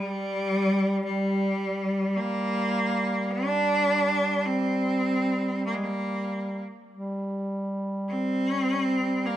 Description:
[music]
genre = caucasian folk, Caucasian lament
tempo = 48-56 BPM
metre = 3/4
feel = rubato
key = G minor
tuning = A4 = 438 Hz
[part]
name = bright cello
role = melody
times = 0.0-9.4 s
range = G3 to D4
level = -25 LUFS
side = equal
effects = none
[part]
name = mellow duduk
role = drone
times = 0.0-9.4 s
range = G3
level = -29 LUFS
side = right 1 dB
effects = none
[sound]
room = light reverb, small room ambience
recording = rough home demo mix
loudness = -24 LUFS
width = side -12 dB against mid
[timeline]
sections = 0.0-9.4 A section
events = none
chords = none

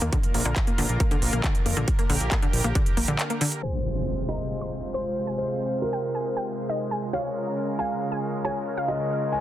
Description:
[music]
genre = uplifting trance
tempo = 137 BPM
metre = 4/4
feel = straight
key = F minor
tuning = A4 = 441 Hz
[part]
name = lush unison pad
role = sustained chords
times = 0.0-9.4 s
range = C3 to C5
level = -30 LUFS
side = equal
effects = chorus, sidechain pumping
[part]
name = wide unison pluck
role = arpeggios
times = 0.0-3.5 s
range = D3 to Bb3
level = -30 LUFS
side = left 1 dB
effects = sidechain pumping, digital delay
[part]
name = fat analog bass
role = bass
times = 0.0-3.2 s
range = Bb1 to F2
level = -26 LUFS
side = equal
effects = sidechain pumping
[part]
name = big-room dance drum kit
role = drums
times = 0.0-3.6 s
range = handclaps, hi-hat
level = -30 LUFS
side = right 2 dB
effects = none
[part]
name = electronic kick drum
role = drums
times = 0.1-2.8 s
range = none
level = -24 LUFS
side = equal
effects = none
[part]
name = wide unison pluck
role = melody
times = 3.6-9.0 s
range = Eb5 to C6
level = -33 LUFS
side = equal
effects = cassette tape, sidechain pumping, digital delay
[part]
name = dark grand piano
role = second line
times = 3.6-9.4 s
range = Bb4 to Ab5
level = -30 LUFS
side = equal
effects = dub echo
[part]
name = impact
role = sound effects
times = 3.6-5.4 s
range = none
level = -32 LUFS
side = equal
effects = none
[sound]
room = light reverb, digital ambience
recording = dense, heavily limited modern master, low-pass filter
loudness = -23 LUFS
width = side -12 dB against mid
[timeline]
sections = 0.0-3.6 A section; 3.6-9.4 B section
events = break 3.2-3.6; impact 3.6-5.4; filter sweep 3.6-9.4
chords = 0.1 Bb; 3.6 Fm; 7.1 Db6

